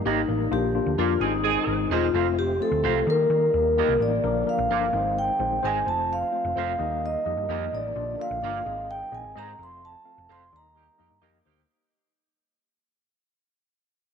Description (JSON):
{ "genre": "soul", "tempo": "129 BPM", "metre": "4/4", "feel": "straight", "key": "unclear", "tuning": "A4 = 440 Hz", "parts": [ { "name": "percussive tonewheel organ", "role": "sustained chords", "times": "0.0-11.7 s", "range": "D3 to F4", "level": "-37 LUFS", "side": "right 1 dB", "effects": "slow rotary speaker, overdrive, chorus vibrato" }, { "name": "vibraphone with soft mallets", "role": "melody", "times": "0.1-11.2 s", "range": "Eb4 to C6", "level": "-25 LUFS", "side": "equal", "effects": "none" }, { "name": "mellow tine electric piano", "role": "accompaniment", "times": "0.1-11.6 s", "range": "F3 to F5", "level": "-30 LUFS", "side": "left 13 dB", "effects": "medium stereo tremolo" }, { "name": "electric guitar through a small old amp", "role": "stabs", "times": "0.1-11.4 s", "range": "F4 to F5", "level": "-32 LUFS", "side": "right 13 dB", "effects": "none" }, { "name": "hollow-body short-scale picked electric bass", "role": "bass", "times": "0.1-11.6 s", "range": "E1 to Eb3", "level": "-31 LUFS", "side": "right 1 dB", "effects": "none" }, { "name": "bright saxophone section", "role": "second line", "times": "1.2-1.8, 10.7-11.6 s", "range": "Bb3 to Ab4", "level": "-28 LUFS", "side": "right 12 dB", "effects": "none" } ], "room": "moderate plate reverb, RT60 2.7 s", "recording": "1960s-style stereo with parts hard left and right", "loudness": "-22 LUFS", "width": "side -7 dB against mid", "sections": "0.0-4.2 A section; 4.2-11.7 B section", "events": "fade-out 4.2-11.7; band accent 9.8-11.7", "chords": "0.0 Eb; 0.5 Bb; 1.2 Ab; 2.1 F; 3.1 Eb; 4.2 Bb; 4.9 Ab; 5.9 F; 6.8 Eb; 8.0 Bb; 8.7 Ab; 9.6 F; 10.5 Eb" }